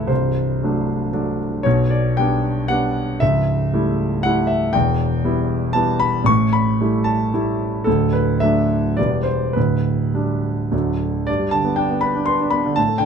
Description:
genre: classical, romantic character piece for solo piano.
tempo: 101-125 BPM.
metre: 3/4.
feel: rubato.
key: G major from 4.7 s.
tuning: A4 = 439 Hz.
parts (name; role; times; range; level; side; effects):
warm concert grand piano; solo; 0.0-13.1 s; C1 to C#6; -17 LUFS; equal; none.
room: little or no reverb.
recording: close, detailed microphones.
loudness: -17 LUFS.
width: side -6 dB against mid.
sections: 0.0-11.3 A section; 11.3-13.1 B section.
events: none.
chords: 0.1 D7/C; 1.7 G/B; 3.2 A7/C#; 4.7 Em; 6.3 A5; 7.9 D; 9.0 Em7; 9.6 G/D; 10.7 D; 11.3 G.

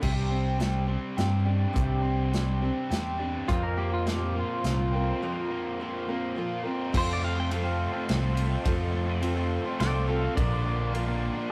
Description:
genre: folk rock and heartland rock.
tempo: 105 BPM.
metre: 3/4.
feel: straight.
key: unclear.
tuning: A4 = 440 Hz.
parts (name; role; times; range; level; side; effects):
picked steel-string acoustic guitar; accompaniment; 0.0-11.5 s; Bb2 to Bb4; -36 LUFS; equal; none.
overdriven electric guitar; riff; 0.0-11.5 s; F2 to G4; -36 LUFS; equal; spring reverb.
fingered electric bass; bass; 0.0-11.3 s; Bb1 to G2; -31 LUFS; equal; none.
natural country drum kit; drums; 0.0-11.1 s; crash cymbal, hi-hat, kick drum, ride cymbal, snare drum; -34 LUFS; equal; none.
pedal steel guitar; second line; 3.5-10.9 s; F4 to G5; -36 LUFS; equal; none.
accordion; sustained chords; 3.5-11.5 s; A4 to D6; -42 LUFS; equal; light tremolo tuning.
room: moderate small room reverb, RT60 0.5 s.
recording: rough rehearsal-room recording.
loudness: -28 LUFS.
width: mono.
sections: 0.0-6.9 A section; 6.9-11.5 B section.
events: break 5.2-6.9; pedal steel guitar solo 6.9-11.5.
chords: 0.0 Csus2; 3.5 Fsus4; 6.9 F; 10.4 Bb.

